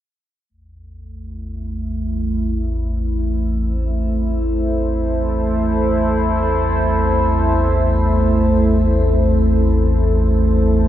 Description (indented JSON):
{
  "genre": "dark ambient drone",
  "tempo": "free time",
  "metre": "none",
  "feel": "none",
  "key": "unclear",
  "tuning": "A4 = 439 Hz",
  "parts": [
    { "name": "deep dark ambient pad", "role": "sustained chords", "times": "1.6-10.9 s", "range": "A3 to C5", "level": "-19 LUFS", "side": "right 1 dB", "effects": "chorus, built-in reverb, shimmer reverb" },
    { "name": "deep rumbling drone", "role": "drone", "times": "0.9-10.9 s", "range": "A1 to E2", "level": "-18 LUFS", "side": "equal", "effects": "built-in reverb, lush chorus" }
  ],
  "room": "wet cathedral reverb, RT60 7.4 s",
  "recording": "none",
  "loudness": "-15 LUFS",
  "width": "side -12 dB against mid",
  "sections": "0.5-10.9 A section",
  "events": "none",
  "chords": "0.5 Am"
}